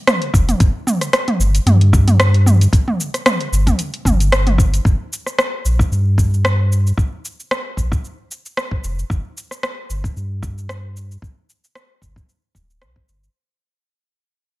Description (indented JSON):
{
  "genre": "organic downtempo",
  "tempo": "113 BPM",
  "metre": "4/4",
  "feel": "swing 55% on 16ths",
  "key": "G minor pentatonic",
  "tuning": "A4 = 440 Hz",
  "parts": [
    { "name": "deep house drum kit", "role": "drums", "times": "0.1-13.3 s", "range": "hi-hat, rim click, shaker, toms", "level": "-18 LUFS", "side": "equal", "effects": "overdrive, small room ambience" },
    { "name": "warm sub bass", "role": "bass", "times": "0.3-13.3 s", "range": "D1 to G2", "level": "-15 LUFS", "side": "equal", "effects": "none" },
    { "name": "electronic kick drum", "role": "drums", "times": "0.3-13.1 s", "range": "none", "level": "-17 LUFS", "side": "equal", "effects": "small room ambience" }
  ],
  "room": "digital ambience",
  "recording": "none",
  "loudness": "-14 LUFS",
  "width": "side -19 dB against mid",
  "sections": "0.0-4.9 A section; 4.9-13.3 B section",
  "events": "fade-out 4.9-13.3",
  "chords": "none"
}